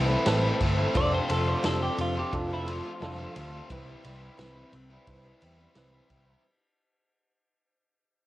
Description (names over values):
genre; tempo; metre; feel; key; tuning
folk rock and heartland rock; 87 BPM; 4/4; straight; unclear; A4 = 440 Hz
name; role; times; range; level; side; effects
dark upright piano; accompaniment; 0.0-6.4 s; C4 to B4; -36 LUFS; right 3 dB; none
picked steel-string acoustic guitar; accompaniment; 0.0-6.5 s; A2 to B4; -38 LUFS; left 4 dB; none
clear symphonic string section; sustained chords; 0.0-6.4 s; C4 to B4; -41 LUFS; left 1 dB; none
overdriven electric guitar; riff; 0.0-6.4 s; F2 to F4; -33 LUFS; left 1 dB; none
picked electric bass; bass; 0.0-6.3 s; F1 to E2; -30 LUFS; equal; none
vintage drum kit; drums; 0.3-6.3 s; kick drum, ride cymbal, snare drum; -32 LUFS; equal; cassette tape
twelve-string electric guitar; second line; 1.0-3.7 s; E4 to D5; -32 LUFS; right 1 dB; analog delay
room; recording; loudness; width
light reverb; home recording on cassette; -25 LUFS; side -16 dB against mid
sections
0.0-6.4 A section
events
fade-out 0.0-6.4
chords
0.0 Amadd9; 0.9 F6; 3.7 Cmaj7